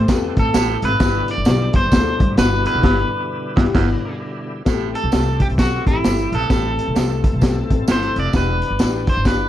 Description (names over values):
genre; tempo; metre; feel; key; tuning
uptempo 1960s-style soul; 131 BPM; 4/4; swing 61% on 8ths; A minor; A4 = 443 Hz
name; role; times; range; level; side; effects
electric guitar at the edge of break-up; melody; 0.0-9.5 s; E4 to D5; -22 LUFS; equal; harmonic tremolo
bright tonewheel organ; sustained chords; 0.0-9.5 s; B2 to A4; -30 LUFS; equal; slow rotary speaker, overdrive, chorus vibrato
upright bass; bass; 0.0-9.4 s; E1 to A2; -22 LUFS; equal; none
dark grand piano; accompaniment; 0.1-9.5 s; B2 to A4; -24 LUFS; left 8 dB; none
crunchy breakbeat drum kit; drums; 0.1-9.4 s; crash cymbal, hi-hat, kick drum, snare drum; -18 LUFS; equal; none
tambourine; percussion; 0.1-9.4 s; none; -35 LUFS; right 8 dB; none
raspy baritone saxophone; riff; 0.5-8.6 s; E2 to A2; -28 LUFS; right 11 dB; none
room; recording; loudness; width
light reverb; dark, warm production; -15 LUFS; side -12 dB against mid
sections
0.0-4.7 A section; 4.7-9.5 B section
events
band accent 2.8-4.7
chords
0.0 Am7; 1.0 G6; 4.7 Am7; 8.3 Em7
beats
0.09 0.54 | 1.00 1.46 1.92 2.37 | 2.83 3.29 3.75 4.20 | 4.66 5.12 5.58 6.04 | 6.50 6.96 7.42 7.88 | 8.34 8.80 9.26